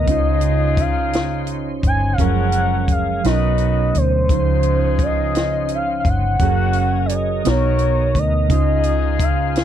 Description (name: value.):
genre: slow six-eight R&B.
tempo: 57 BPM (dotted quarters).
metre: 6/8.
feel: straight.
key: Db major.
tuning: A4 = 438 Hz.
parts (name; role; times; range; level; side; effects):
gliding portamento lead; melody; 0.0-9.6 s; C5 to Ab5; -21 LUFS; left 1 dB; chorus.
tine electric piano; accompaniment; 0.0-9.6 s; Cb3 to Db5; -23 LUFS; right 13 dB; none.
tonewheel organ; sustained chords; 0.0-9.6 s; Cb3 to C5; -29 LUFS; left 2 dB; chorus vibrato, slow rotary speaker.
vintage muted fingered electric bass; bass; 0.0-9.6 s; Gb1 to D2; -20 LUFS; left 1 dB; none.
warm horn section; stabs; 0.1-9.6 s; F3 to Cb5; -28 LUFS; left 13 dB; none.
compact cocktail drum kit; drums; 0.1-9.6 s; hi-hat, kick drum, snare drum; -21 LUFS; left 1 dB; none.
room: little or no reverb.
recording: dry, close 1970s-style studio recording.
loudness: -15 LUFS.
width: side -10 dB against mid.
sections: 0.0-9.6 A section.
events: kick muted 3.2-4.3.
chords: 0.1 Dbmaj9; 2.2 Gbmaj9; 3.2 Cbmaj9; 4.3 Dbmaj9; 6.4 Gbadd9; 7.5 Cbmaj9; 8.5 Dbmaj9.